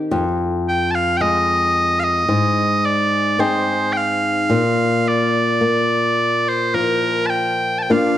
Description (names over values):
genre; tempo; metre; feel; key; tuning
celtic folk, Celtic slow air; 54 BPM; 4/4; rubato; unclear; A4 = 440 Hz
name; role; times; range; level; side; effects
flamenco guitar; accompaniment; 0.0-8.2 s; F2 to Ab4; -19 LUFS; left 2 dB; none
loud bright bagpipes; melody; 0.7-8.2 s; Bb4 to A5; -18 LUFS; right 1 dB; none
room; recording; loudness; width
moderate recital hall reverb, RT60 1.6 s; dark, warm production; -16 LUFS; side -12 dB against mid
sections
0.0-8.2 A section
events
none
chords
0.1 Fm; 2.3 Ab; 4.5 Bb